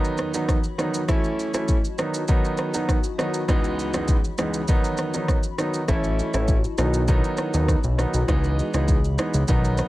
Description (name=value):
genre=afrobeats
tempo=100 BPM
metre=4/4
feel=straight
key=B mixolydian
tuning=A4 = 437 Hz
part: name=clear concert grand piano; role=accompaniment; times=0.0-9.9 s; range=C#2 to E4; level=-25 LUFS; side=right 2 dB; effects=none
part: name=granular cloud pad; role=sustained chords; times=0.0-9.9 s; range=E3 to B5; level=-33 LUFS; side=left 5 dB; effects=built-in reverb
part: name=afro-pop drum kit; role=drums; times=0.0-9.9 s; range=kick drum, rim click, shaker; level=-23 LUFS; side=equal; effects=none
part: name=fat analog bass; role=bass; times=5.9-9.8 s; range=A1 to D#2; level=-22 LUFS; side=equal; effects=none
room=light reverb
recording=none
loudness=-20 LUFS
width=side -17 dB against mid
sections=0.0-9.9 A section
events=none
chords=0.0 B; 1.1 A; 2.0 B; 3.5 C#m7; 4.7 B; 5.9 A; 6.8 B; 8.3 C#m7